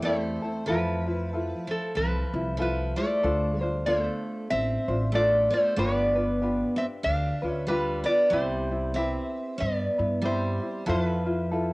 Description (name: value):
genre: Hawaiian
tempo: 94 BPM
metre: 4/4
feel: swing 59% on 8ths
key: C major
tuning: A4 = 439 Hz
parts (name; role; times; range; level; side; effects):
- lap resonator guitar; melody; 0.0-11.7 s; A4 to F5; -28 LUFS; equal; cassette tape
- picked steel-string acoustic guitar; second line; 0.0-11.7 s; F3 to D4; -32 LUFS; right 1 dB; cassette tape
- tenor ukulele; accompaniment; 0.0-11.7 s; C4 to C5; -31 LUFS; left 1 dB; cassette tape
- upright bass; bass; 0.0-11.7 s; G1 to G2; -30 LUFS; equal; none
room: light reverb, studio reverb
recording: home recording on cassette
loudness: -24 LUFS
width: side -24 dB against mid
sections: 0.0-11.7 A section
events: none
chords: 0.0 Am7; 0.7 Fmaj7; 3.2 Dm7; 5.8 G7; 8.3 Cmaj7; 10.9 Fmaj7